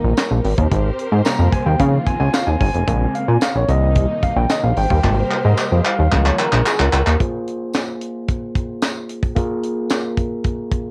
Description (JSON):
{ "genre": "early-eighties boogie funk", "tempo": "111 BPM", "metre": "4/4", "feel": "straight", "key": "unclear", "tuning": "A4 = 442 Hz", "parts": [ { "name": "overdriven tine electric piano", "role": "accompaniment", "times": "0.0-10.9 s", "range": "C3 to Bb5", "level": "-25 LUFS", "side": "equal", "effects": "lush chorus" }, { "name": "warm studio string section", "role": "sustained chords", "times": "0.0-7.2 s", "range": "C3 to C5", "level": "-29 LUFS", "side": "equal", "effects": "none" }, { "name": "chorused synth bass", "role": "bass", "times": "0.0-7.2 s", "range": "F1 to Db3", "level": "-18 LUFS", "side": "equal", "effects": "none" }, { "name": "tight funk drum kit", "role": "drums", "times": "0.2-10.8 s", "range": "handclaps, hi-hat, kick drum, snare drum", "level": "-23 LUFS", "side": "equal", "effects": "none" }, { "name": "tambourine", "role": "percussion", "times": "0.2-10.0 s", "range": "none", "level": "-36 LUFS", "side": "equal", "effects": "none" } ], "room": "little or no reverb", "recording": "home recording on cassette", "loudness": "-18 LUFS", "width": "mono", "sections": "0.0-7.2 A section; 7.2-10.9 B section", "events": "tine electric piano solo 0.0-7.2; drum fill 5.0-7.2", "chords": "0.4 Abmaj9; 1.8 Db6; 2.9 Bbm9; 3.7 Cm7; 4.8 Abmaj9; 6.1 Db6; 7.2 Ab69", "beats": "0.17 | 0.72 1.26 1.80 2.34 | 2.88 3.42 3.96 4.50 | 5.04 5.58 6.12 6.66 | 7.20 7.74 8.28 8.82 | 9.36 9.90 10.45" }